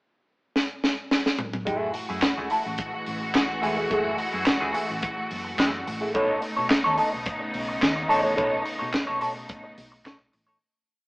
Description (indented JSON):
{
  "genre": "disco",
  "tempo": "107 BPM",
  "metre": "4/4",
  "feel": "straight",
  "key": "F# dorian",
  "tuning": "A4 = 441 Hz",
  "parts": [
    { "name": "tight funk drum kit", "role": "drums", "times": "0.6-10.5 s", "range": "handclaps, hi-hat, kick drum, snare drum, toms", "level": "-26 LUFS", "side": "equal", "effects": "none" },
    { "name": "semi-hollow electric guitar", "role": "accompaniment", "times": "1.7-10.6 s", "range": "A3 to D#5", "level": "-25 LUFS", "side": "equal", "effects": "wah" },
    { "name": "clear studio string section", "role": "sustained chords", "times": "1.7-10.6 s", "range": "C#3 to F#4", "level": "-30 LUFS", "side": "equal", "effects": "none" },
    { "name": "hollow-body short-scale fingered electric bass", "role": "bass", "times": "1.7-10.6 s", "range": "E1 to B2", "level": "-38 LUFS", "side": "equal", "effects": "none" }
  ],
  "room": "moderate stone room reverb, RT60 1.3 s",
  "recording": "band playing live in one room, AM radio sound",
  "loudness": "-23 LUFS",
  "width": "side -27 dB against mid",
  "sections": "0.0-1.7 pickup bar; 1.7-10.6 groove",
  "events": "drum fill 0.6-1.7; fade-out 8.4-10.6",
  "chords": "0.0 N.C.; 1.7 F#m9; 6.1 B9",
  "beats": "0.00 0.56 1.12 | 1.67 2.23 2.79 3.35 | 3.91 4.47 5.03 5.58 | 6.14 6.70 7.26 7.82 | 8.38 8.94 9.50 10.05"
}